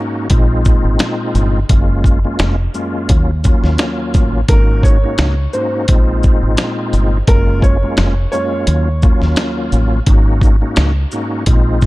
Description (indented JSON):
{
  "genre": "hip hop, boom-bap hip-hop",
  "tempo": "86 BPM",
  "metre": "4/4",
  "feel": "swing 55% on 16ths",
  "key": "Eb dorian",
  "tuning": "A4 = 440 Hz",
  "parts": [
    { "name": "bright tonewheel organ", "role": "accompaniment", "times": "0.0-11.9 s", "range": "Eb2 to Gb4", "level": "-19 LUFS", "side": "left 1 dB", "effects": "chorus vibrato, fast rotary speaker, high-pass filter, low-pass filter" },
    { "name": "deep dub fingered electric bass", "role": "bass", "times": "0.3-11.9 s", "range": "F1 to Eb2", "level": "-15 LUFS", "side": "equal", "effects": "none" },
    { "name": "dusty soul sampler-style drum kit", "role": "drums", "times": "0.3-11.9 s", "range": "hi-hat, kick drum, shaker, snare drum", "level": "-13 LUFS", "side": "equal", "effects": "none" },
    { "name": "warm upright piano", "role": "melody", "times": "4.5-9.5 s", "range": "Bb4 to Db5", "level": "-22 LUFS", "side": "right 2 dB", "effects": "high-pass filter, low-pass filter, analog delay" }
  ],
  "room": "little or no reverb",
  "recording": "dark, warm production",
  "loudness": "-11 LUFS",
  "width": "side -19 dB against mid",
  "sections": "0.0-11.9 A section",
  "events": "none",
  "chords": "0.3 Bb9sus4; 1.7 Gbmaj7; 3.1 Ebm9; 4.5 Ab9sus4; 5.9 Bb9sus4; 7.3 Gbmaj7; 8.7 Ebm9; 10.1 Ab9sus4"
}